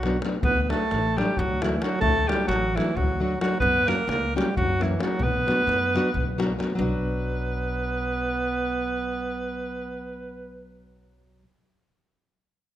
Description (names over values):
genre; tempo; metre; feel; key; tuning
balkan folk, Balkan wedding band; 264 BPM (eighths); 7/8; straight; B minor; A4 = 441 Hz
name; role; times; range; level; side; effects
clear alto saxophone; melody; 0.0-10.7 s; E4 to B4; -26 LUFS; equal; none
mellow clarinet; second line; 0.0-10.7 s; E3 to B3; -31 LUFS; right 5 dB; none
nylon-string guitar; accompaniment; 0.0-11.4 s; F#3 to F#4; -30 LUFS; left 2 dB; none
upright bass; bass; 0.0-11.4 s; A1 to F#2; -31 LUFS; equal; none
davul; percussion; 0.0-7.0 s; none; -29 LUFS; left 2 dB; none
room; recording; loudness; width
light reverb; close, detailed microphones; -22 LUFS; side -12 dB against mid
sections
0.0-6.8 A section; 6.8-10.0 B section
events
none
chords
0.4 D; 3.6 F#; 5.2 Bm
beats
0.19 | 0.42 0.65 0.87 1.10 1.33 1.56 1.78 | 2.01 2.24 2.47 2.70 2.92 3.15 3.38 | 3.61 3.83 4.06 4.29 4.52 4.75 4.97 | 5.20 5.43 5.66 5.88 6.11 6.34 6.57 | 6.79 7.02 7.25 7.48 7.70 7.93 8.16 | 8.38 8.61 8.84 9.07 9.29 9.52 9.75